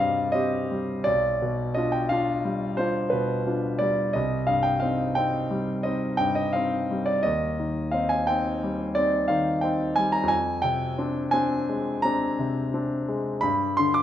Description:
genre	classical, romantic nocturne for solo piano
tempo	58 BPM (dotted quarters)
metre	9/8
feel	uneven beats, rubato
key	C minor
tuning	A4 = 439 Hz
part	clear concert grand piano	solo	0.0-14.0 s	B1 to D6	-23 LUFS	equal	none
room	moderate recital hall reverb, RT60 1.4 s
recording	dark, warm production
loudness	-23 LUFS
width	side -11 dB against mid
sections	0.0-14.0 A section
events	none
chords	0.0 Cm; 1.1 G7/B; 4.1 Cm; 7.3 Cm/Eb; 10.3 Dm7b5/F; 13.4 G

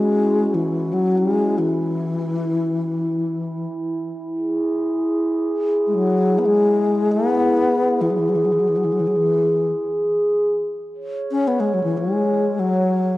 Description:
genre	world meditative, free-time meditation music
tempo	free time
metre	none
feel	none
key	E major pentatonic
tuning	A4 = 439 Hz
part	breathy bright bass flute	melody	0.0-13.2 s	E3 to C#4	-20 LUFS	left 2 dB	cassette tape, analog delay
part	glass harmonica	texture	0.0-13.2 s	C#4 to C#5	-21 LUFS	right 1 dB	cassette tape
room	wet spring reverb, RT60 2.2 s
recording	home recording on cassette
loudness	-18 LUFS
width	side -17 dB against mid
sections	0.0-10.1 A section; 10.1-13.2 A section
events	none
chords	none

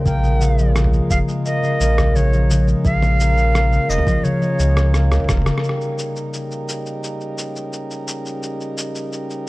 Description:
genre	folktronica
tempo	86 BPM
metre	4/4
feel	straight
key	Eb mixolydian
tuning	A4 = 437 Hz
part	pedal harmonium	sustained chords	0.0-9.5 s	Db3 to Bb4	-28 LUFS	right 1 dB	vintage 12-bit sampler grit
part	concert harp	arpeggios	0.0-8.5 s	Db3 to Ab4	-21 LUFS	left 1 dB	none
part	breathy bright concert flute	melody	0.1-5.3 s	Db5 to G5	-24 LUFS	right 1 dB	tape echo
part	warm sub bass	bass	0.1-5.5 s	F1 to Db2	-17 LUFS	equal	tube saturation
part	electronic kick drum	drums	0.1-5.4 s	none	-20 LUFS	equal	overdrive
part	lo-fi sampler-style drum kit	drums	0.1-9.4 s	rim click, shaker, toms	-26 LUFS	right 1 dB	none
room	studio ambience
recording	dry, close 1970s-style studio recording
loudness	-16 LUFS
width	side -21 dB against mid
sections	0.0-5.6 A section; 5.6-9.5 B section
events	drum fill 4.9-5.6; band accent 5.5-5.8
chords	0.1 Bbm7; 5.6 Eb7

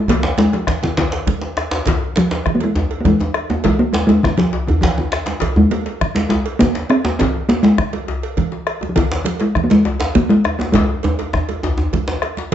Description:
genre	west african traditional, West African drum ensemble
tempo	135 BPM (dotted quarters)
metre	12/8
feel	straight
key	Ab major pentatonic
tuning	A4 = 440 Hz
part	talking drum	melody	0.0-12.2 s	Eb3 to C4	-16 LUFS	equal	none
part	bombo	percussion	0.1-12.5 s	none	-22 LUFS	left 2 dB	none
part	congas	percussion	0.1-12.5 s	none	-26 LUFS	right 7 dB	none
part	cowbell	percussion	0.1-12.5 s	none	-28 LUFS	right 7 dB	none
part	djembe	percussion	0.1-12.5 s	none	-25 LUFS	left 3 dB	none
part	djembe	percussion	0.2-12.2 s	none	-21 LUFS	equal	none
room	moderate large studio reverb, RT60 1.0 s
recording	band playing live in one room, nothing above 7.9 kHz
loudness	-15 LUFS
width	side -10 dB against mid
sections	0.0-12.5 A section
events	drum fill 4.7-5.4, 10.7-12.5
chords	none

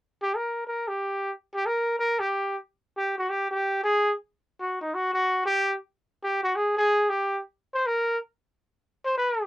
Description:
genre	jazz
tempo	184 BPM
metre	4/4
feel	swing 64% on 8ths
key	unclear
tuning	A4 = 441 Hz
part	warm trumpet	solo	0.2-9.5 s	Eb4 to C5	-24 LUFS	equal	cassette tape
room	moderate booth ambience, RT60 0.2 s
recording	home recording on cassette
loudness	-25 LUFS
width	side -16 dB against mid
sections	0.0-2.6 A section; 2.6-9.5 B section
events	none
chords	none

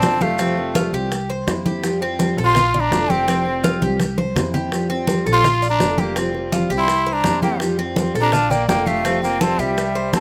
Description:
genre	latin, Cuban son and guajira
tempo	166 BPM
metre	4/4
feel	straight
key	F major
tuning	A4 = 441 Hz
part	breathy jazz flute	melody	0.0-10.2 s	E5 to C6	-23 LUFS	equal	none
part	growling trumpet	second line	0.0-10.2 s	G3 to F4	-26 LUFS	equal	slapback echo
part	fingerpicked steel-string acoustic guitar	accompaniment	0.0-10.2 s	C3 to F4	-26 LUFS	equal	none
part	Cuban tres	arpeggios	0.0-10.2 s	C4 to D5	-28 LUFS	equal	none
part	upright bass	bass	0.0-10.2 s	F1 to F2	-29 LUFS	equal	none
part	bongos	percussion	0.0-10.2 s	none	-29 LUFS	equal	none
part	congas	percussion	0.0-10.2 s	none	-26 LUFS	equal	none
part	maracas	percussion	0.0-10.2 s	none	-38 LUFS	equal	none
room	little or no reverb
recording	recorded outdoors, with no room sound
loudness	-19 LUFS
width	mono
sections	0.0-10.2 A section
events	drum fill 3.8-4.7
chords	0.4 Fadd9; 1.1 C7; 1.8 Fadd9; 2.6 Bbmaj7; 3.3 Fsus2; 4.0 C7; 4.7 Fadd9; 5.4 Bbmaj7; 6.2 Fsus2; 6.9 C7; 7.6 Fadd9; 8.3 Bbmaj7; 9.0 Fsus2

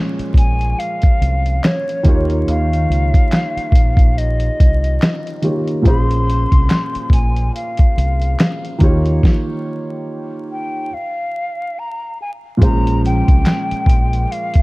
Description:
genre	lo-fi hip hop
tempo	71 BPM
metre	4/4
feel	swing 58% on 16ths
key	Bb dorian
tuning	A4 = 436 Hz
part	felt-muted upright piano	accompaniment	0.0-14.6 s	Bb2 to Db5	-22 LUFS	right 1 dB	cassette tape, low-pass filter
part	deep dub fingered electric bass	bass	0.2-14.2 s	Bb1 to Eb2	-17 LUFS	equal	none
part	lo-fi sampler-style drum kit	drums	0.2-14.6 s	handclaps, hi-hat, kick drum, snare drum	-13 LUFS	equal	vintage 12-bit sampler grit
part	breathy mellow silver concert flute	melody	0.4-14.6 s	Db5 to C6	-23 LUFS	left 1 dB	low-pass filter
room	small room ambience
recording	dark, warm production, vinyl crackle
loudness	-13 LUFS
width	side -22 dB against mid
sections	0.0-12.6 A section; 12.6-14.6 B section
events	stop 9.2-12.6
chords	0.0 Bbm9; 2.1 Eb7; 5.9 Bbm9; 8.8 Eb7; 10.9 N.C.; 12.6 Bbm9

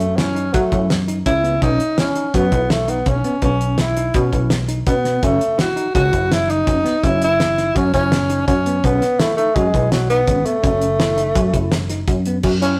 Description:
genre	progressive instrumental, band music in an uneven meter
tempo	166 BPM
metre	5/4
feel	straight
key	F# dorian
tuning	A4 = 442 Hz
part	breathy tenor saxophone	melody	0.0-12.8 s	F#3 to F#4	-21 LUFS	equal	none
part	plucky analog bass	bass	0.0-12.8 s	F#1 to F#3	-23 LUFS	equal	none
part	damped 70s drum kit	drums	0.0-12.7 s	crash cymbal, hi-hat, kick drum, snare drum	-23 LUFS	equal	none
part	bell-like tine electric piano	arpeggios	0.2-12.7 s	B3 to F#4	-28 LUFS	equal	none
room	moderate stone room reverb, RT60 1.1 s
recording	rough rehearsal-room recording, tube saturation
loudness	-17 LUFS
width	mono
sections	0.0-12.4 A section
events	none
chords	0.0 F#m7; 1.6 Bsus24; 5.2 F#7(no3); 8.8 Bsus24; 10.6 F#m7

